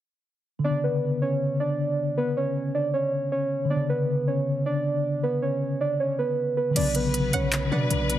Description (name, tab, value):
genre	hip hop, trap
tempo	157 BPM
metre	4/4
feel	half-time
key	B minor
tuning	A4 = 437 Hz
part	muted felt-like synth keys	melody	0.6-8.2 s	B4 to D5	-26 LUFS	right 2 dB	chorus, low-pass filter
part	mellow tine electric piano	accompaniment	0.6-8.2 s	C#3 to B3	-27 LUFS	left 2 dB	medium stereo tremolo, low-pass filter
part	warm symphonic string section	sustained chords	6.8-8.2 s	B2 to B4	-32 LUFS	left 4 dB	none
part	hard-hitting 808-style bass	bass	6.8-8.2 s	B1 to B2	-28 LUFS	equal	none
part	trap drum kit	drums	6.8-8.2 s	crash cymbal, handclaps, hi-hat	-29 LUFS	equal	none
part	string-like resonator pluck	second line	7.3-7.5 s	F#5	-34 LUFS	right 3 dB	chorus, phaser, digital delay
room	light reverb, digital ambience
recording	heavily compressed radio sound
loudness	-23 LUFS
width	side -12 dB against mid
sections	0.6-6.8 A section; 6.8-8.2 B section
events	none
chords	0.6 Bmadd9